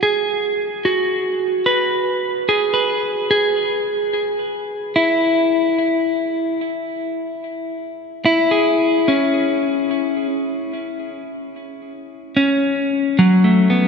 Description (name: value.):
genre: ambient.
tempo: 73 BPM.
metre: 4/4.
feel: straight.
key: E major.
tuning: A4 = 440 Hz.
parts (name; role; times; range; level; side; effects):
clean electric guitar; solo; 0.0-13.9 s; F#3 to B4; -16 LUFS; equal; ping-pong delay.
room: wet cathedral reverb, RT60 6.5 s.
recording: none.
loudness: -16 LUFS.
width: side -5 dB against mid.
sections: 0.0-3.3 A section; 3.3-13.9 B section.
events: none.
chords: 0.0 B5; 3.3 E; 9.9 N.C..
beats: | 0.03 0.85 1.67 2.49 | 3.31 4.14 4.96 5.78 | 6.60 7.42 8.25 9.07 | 9.89 10.71 11.53 12.36 | 13.18.